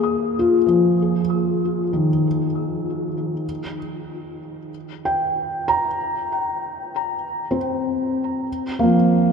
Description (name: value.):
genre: ambient.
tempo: free time.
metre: none.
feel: none.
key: unclear.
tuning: A4 = 440 Hz.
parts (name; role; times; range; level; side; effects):
felt-muted upright piano; solo; 0.0-9.3 s; Eb3 to Eb6; -19 LUFS; left 1 dB; ping-pong delay.
room: wet cathedral reverb, RT60 6.1 s.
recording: dark, warm production.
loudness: -19 LUFS.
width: side -6 dB against mid.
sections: 0.0-9.3 A section.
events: none.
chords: 0.0 Ebsus24; 3.4 Eb5; 8.5 Ebsus2 (rootless).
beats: free time.